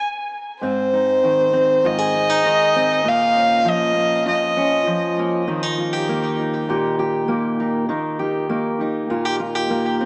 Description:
folk; 99 BPM; 4/4; straight; Ab major; A4 = 440 Hz
warm fiddle; melody; 0.0-5.1 s; C5 to F5; -20 LUFS; equal; analog delay
fingerpicked steel-string acoustic guitar; accompaniment; 0.6-10.1 s; F2 to Ab4; -23 LUFS; equal; analog delay
moderate echo chamber reverb, RT60 1.9 s; echo-heavy mix, small speaker sound; -19 LUFS; mono
0.6-10.1 A section
0.0 N.C.; 0.6 Ab; 3.0 Bbm; 5.5 Eb

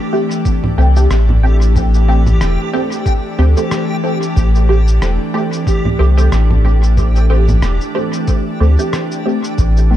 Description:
ambient dub; 92 BPM; 4/4; swing 56% on 16ths; A minor; A4 = 440 Hz
soft additive organ-like pad; sustained chords; 0.0-10.0 s; E3 to G4; -21 LUFS; left 1 dB; ensemble chorus, built-in reverb
backwards swelling texture; texture; 0.0-10.0 s; G4; -27 LUFS; right 1 dB; built-in reverb
filtered dub chord stab; stabs; 0.1-10.0 s; A3 to G4; -20 LUFS; right 1 dB; phaser, ensemble chorus, cassette tape, dub echo
electronic cabasa, congas and rim click; drums; 0.3-9.9 s; -23 LUFS; right 1 dB; dub echo
electronic kick drum; drums; 0.5-9.7 s; -16 LUFS; equal
warm sub bass; bass; 0.8-10.0 s; E1 to D2; -11 LUFS; equal; tube saturation
little or no reverb; dark, warm production; -11 LUFS; side -12 dB against mid
0.0-10.0 A section
0.0 Am7

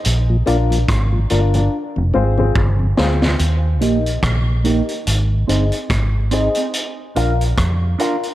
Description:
dub reggae; 72 BPM; 4/4; swing 57% on 16ths; Eb major; A4 = 439 Hz
vintage drum kit; drums; 0.0-8.3 s; hi-hat, kick drum, rim click, snare drum; -22 LUFS; equal
vintage muted fingered electric bass; bass; 0.1-7.9 s; F1 to F2; -16 LUFS; equal
mellow tonewheel organ; accompaniment; 0.3-3.3 s; F2 to F4; -24 LUFS; left 2 dB; slow rotary speaker
dark upright piano; stabs; 0.5-8.2 s; C4 to F5; -22 LUFS; left 4 dB; low-pass filter, dub echo
clean electric guitar; accompaniment; 3.8-8.2 s; Bb3 to Bb4; -23 LUFS; right 7 dB; spring reverb, low-pass filter, dub echo
light reverb; -15 LUFS; side -14 dB against mid
0.0-3.4 A section; 3.4-8.3 B section
break 0.0-3.4; drum fill 1.7-3.4; filter sweep 3.4-8.3
0.0 Bb; 1.7 Fm; 3.4 Eb; 5.1 Ab; 6.7 Bb

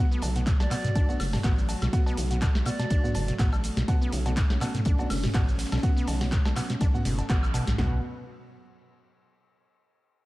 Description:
acid house; 123 BPM; 4/4; swing 55% on 16ths; B minor; A4 = 440 Hz
warm analog pad; sustained chords; 0.0-8.0 s; B2 to B4; -37 LUFS; right 1 dB; chorus, sidechain pumping
acid bass, saw; riff; 0.0-8.0 s; B1 to D4; -32 LUFS; equal; sidechain pumping, tape echo
warm grand piano; stabs; 0.0-8.0 s; B3 to F#5; -37 LUFS; right 1 dB; tape echo
booming analog drum machine; drums; 0.1-7.8 s; cowbell, handclaps, hi-hat, shaker, snare drum, toms, woodblock; -32 LUFS; equal
round analog bass; bass; 0.2-8.0 s; F#1 to B1; -30 LUFS; equal; sidechain pumping
warm soul drum kit; drums; 0.2-7.8 s; hi-hat, ride cymbal, snare drum; -48 LUFS; left 2 dB
punchy analog drum machine; drums; 0.5-7.9 s; kick drum, snare drum, toms; -25 LUFS; equal
bright reedy silver concert flute; melody; 0.6-3.3 s; D5; -38 LUFS; right 1 dB; digital delay
light reverb, studio reverb; dark, warm production; -23 LUFS; side -18 dB against mid
0.0-7.8 A section; 7.8-9.7 B section
drop 0.0-7.8; band accent 7.3
0.0 B5

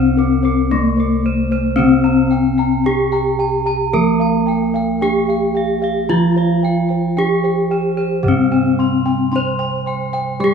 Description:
gamelan; 56 BPM; 4/4; straight; A4 = 440 Hz
gamelan-type bronze metallophone; melody; 0.0-10.5 s; Bb3-45c to C5; -16 LUFS; left 3 dB
gamelan-type bronze metallophone; accompaniment; 0.0-10.5 s; C3 to Bb3-45c; -20 LUFS; right 4 dB
gamelan-type bossed gongs; arpeggios; 0.0-10.4 s; Bb4-45c to C6; -27 LUFS; left 2 dB
gamelan-type bronze metallophone; arpeggios; 0.0-10.5 s; Bb4-45c to C6; -25 LUFS; right 5 dB
gamelan-type bossed gongs; bass; 0.0-10.5 s; C2 to G4+25c; -22 LUFS; left 1 dB
moderate scoring stage reverb, RT60 2.0 s; small room reverb; -14 LUFS; side -6 dB against mid
0.0-10.5 A section

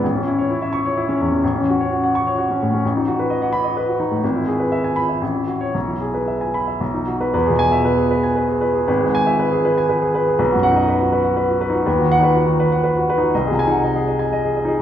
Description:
classical, romantic character piece for solo piano; 110-131 BPM; 3/4; rubato; E major; A4 = 440 Hz
clear baby grand piano; solo; 0.0-14.8 s; G#1 to C#6; -16 LUFS; equal
wet recital hall reverb, RT60 1.5 s; heard from further back in the room; -16 LUFS; side -10 dB against mid
0.0-7.3 A section; 7.3-14.8 B section
0.0 A; 1.4 F#m/A; 2.8 B7/A; 4.2 E/G#; 5.2 F#m7/A; 5.7 E/B; 6.8 B; 7.3 E; 8.9 E/G#; 10.4 B; 11.9 B/D#; 13.3 G#7/B#

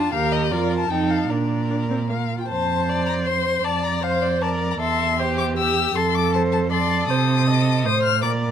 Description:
quick classical-period movement for string quartet; 157 BPM; 3/4; straight; F major; A4 = 440 Hz
warm violin; melody; 0.0-8.3 s; D5 to F6; -24 LUFS; left 9 dB
rich violin; second line; 0.0-8.5 s; F4 to D5; -27 LUFS; left 4 dB
rich viola; accompaniment; 0.0-8.5 s; Bb3 to E5; -25 LUFS; right 2 dB
warm cello; bass; 0.0-8.5 s; Eb2 to C3; -23 LUFS; right 4 dB
light reverb; close, detailed microphones; -19 LUFS; side -9 dB against mid
0.0-2.5 A section; 2.5-8.5 B section
0.1 Eb; 0.5 Bb/F; 0.9 F7; 1.3 Bb; 2.5 F; 3.6 Bb/F; 4.8 C/E; 6.0 F; 7.1 Adim

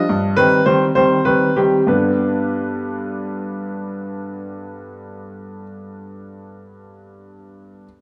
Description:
classical-period piano sonatina; 64 BPM (dotted quarters); 6/8; straight; G major; A4 = 441 Hz
bright grand piano; solo; 0.0-7.9 s; G2 to Eb5; -20 LUFS; equal
wet recital hall reverb, RT60 1.4 s; -18 LUFS; mono
0.0-1.9 A section; 1.9-5.6 B section
slowing down 0.0-1.9
0.1 Cm/G; 1.9 G

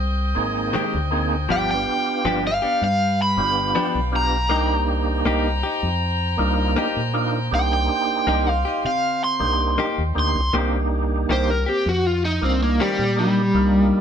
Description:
blues; 80 BPM; 4/4; straight; C minor; A4 = 441 Hz
bright horn section; sustained chords; 0.0-10.5 s; B4 to C6; -29 LUFS; equal
deep dub fingered electric bass; bass; 0.0-13.9 s; G1 to C3; -24 LUFS; equal
overdriven tonewheel organ; accompaniment; 0.3-14.0 s; Bb3 to Ab4; -25 LUFS; right 3 dB; slow rotary speaker, chorus vibrato
direct-recorded clean electric guitar; stabs; 0.7-13.0 s; Eb3 to G4; -26 LUFS; left 4 dB
overdriven electric guitar; melody; 1.5-14.0 s; G3 to C6; -21 LUFS; equal; tremolo
moderate stone room reverb, RT60 1.3 s; band playing live in one room; -18 LUFS; side -8 dB against mid
0.0-10.5 A section; 10.5-14.0 B section
overdriven electric guitar solo 10.5-14.0
0.0 Abmaj7; 1.5 G7; 4.5 Cm7

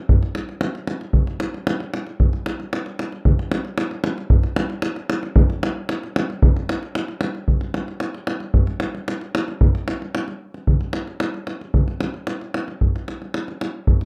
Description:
balkan folk; 113 BPM; 2/4; straight
davul; percussion; 0.1-14.1 s; -22 LUFS; equal
light reverb; -22 LUFS; mono
0.0-6.4 A section; 6.4-14.1 B section

